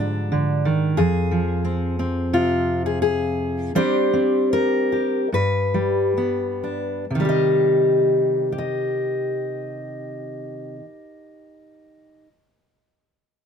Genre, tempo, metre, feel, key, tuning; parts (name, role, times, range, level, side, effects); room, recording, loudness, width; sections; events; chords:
folk, solo fingerstyle acoustic guitar; 63-90 BPM; 4/4; straight; C minor; A4 = 440 Hz
fingerpicked steel-string acoustic guitar; solo; 0.0-12.3 s; F2 to Eb5; -19 LUFS; equal
light reverb; close, detailed microphones; -19 LUFS; side -7 dB against mid
0.0-7.1 A section; 7.1-10.9 B section
slowing down 1.0-7.1
0.0 Ddim; 1.0 Fm; 3.8 Gsus4; 5.3 G; 7.1 Cm